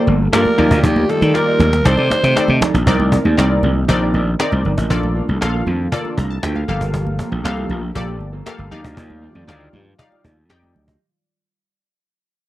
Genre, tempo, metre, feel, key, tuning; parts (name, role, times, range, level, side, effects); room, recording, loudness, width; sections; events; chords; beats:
early-eighties boogie funk; 118 BPM; 4/4; straight; C dorian; A4 = 441 Hz
breathy alto saxophone; melody; 0.0-2.6 s; G4 to C5; -18 LUFS; equal
funky polysynth comp; accompaniment; 0.0-10.8 s; Bb3 to Bb5; -22 LUFS; left 1 dB; chorus
warm analog pad; sustained chords; 0.0-11.0 s; Eb3 to D5; -27 LUFS; equal
electric guitar through a small old amp; riff; 0.0-11.0 s; Bb3 to Eb5; -27 LUFS; right 4 dB; wide subtle chorus
gritty slap bass; bass; 0.1-10.9 s; G1 to Eb3; -17 LUFS; equal; overdrive
cajon; drums; 0.1-11.0 s; -20 LUFS; equal
congas; percussion; 0.1-10.9 s; -26 LUFS; right 3 dB
little or no reverb; dry, close 1970s-style studio recording; -14 LUFS; side -15 dB against mid
0.0-2.9 A section; 2.9-11.0 B section
drum fill 0.8-2.9; fade-out 2.9-11.0
0.0 Gm9; 0.6 Ebmaj9; 1.9 Cm69; 2.9 Cm9; 4.9 Bbmaj7; 6.7 Gm9; 8.7 Ebmaj9
0.33 | 0.83 1.34 1.85 2.36 | 2.87 3.38 3.88 4.39 | 4.90 5.41 5.92 6.43 | 6.94 7.45 7.95 8.46 | 8.97 9.48 9.99 10.50